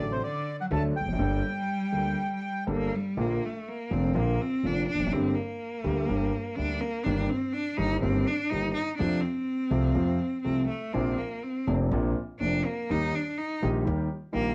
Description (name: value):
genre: tango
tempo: 124 BPM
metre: 4/4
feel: rubato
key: G minor, Bb major from 3.2 s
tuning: A4 = 441 Hz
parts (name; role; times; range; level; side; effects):
- bandoneon; melody; 0.0-2.6 s; C5 to A5; -35 LUFS; equal; cassette tape
- clear cello; second line; 0.0-14.5 s; C3 to Eb4; -33 LUFS; equal; cassette tape
- dark concert grand piano; accompaniment; 0.0-14.5 s; F1 to A4; -32 LUFS; equal; cassette tape
- upright bass; bass; 0.0-14.5 s; E1 to F2; -34 LUFS; equal; none
room: moderate studio reverb, RT60 0.5 s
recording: home recording on cassette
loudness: -29 LUFS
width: mono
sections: 0.0-3.2 A section; 3.2-14.5 B section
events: cello solo 3.2-14.5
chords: 0.0 D; 1.2 Gmadd9; 3.2 Bb; 5.1 Gm; 7.1 Eb/G; 9.0 F; 10.9 Bbadd9; 12.9 Eb